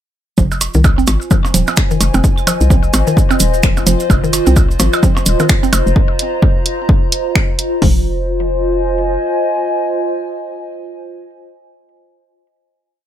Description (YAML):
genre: minimal techno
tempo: 129 BPM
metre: 4/4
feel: swing 59% on 16ths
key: F minor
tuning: A4 = 440 Hz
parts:
  - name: mallet-like synth pluck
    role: riff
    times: 0.4-8.0 s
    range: Eb3 to C4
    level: -20 LUFS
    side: equal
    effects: chorus, sidechain pumping, digital delay
  - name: hollow knocking FM bass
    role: bass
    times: 0.4-9.2 s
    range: Eb1 to C2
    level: -15 LUFS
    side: equal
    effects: sidechain pumping
  - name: punchy analog drum machine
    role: drums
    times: 0.4-7.9 s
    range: hi-hat, kick drum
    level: -13 LUFS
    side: equal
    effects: none
  - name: maracas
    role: percussion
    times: 0.4-5.9 s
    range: none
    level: -23 LUFS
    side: right 5 dB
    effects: none
  - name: warbly tape-like pad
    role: texture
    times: 1.2-11.1 s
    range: F4 to Bb5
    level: -19 LUFS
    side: equal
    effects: chorus, built-in reverb, phaser, sidechain pumping
  - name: percussion blips and claves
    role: percussion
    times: 0.5-5.8 s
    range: none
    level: -22 LUFS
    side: right 4 dB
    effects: ping-pong delay
  - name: punchy analog drum machine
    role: drums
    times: 0.6-7.7 s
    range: finger snaps, hi-hat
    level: -18 LUFS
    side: right 1 dB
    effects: none
room: light reverb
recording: none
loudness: -11 LUFS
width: side -11 dB against mid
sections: 0.4-7.8 drop; 7.8-11.5 final chord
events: drop 0.4-7.8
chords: 0.4 Fm7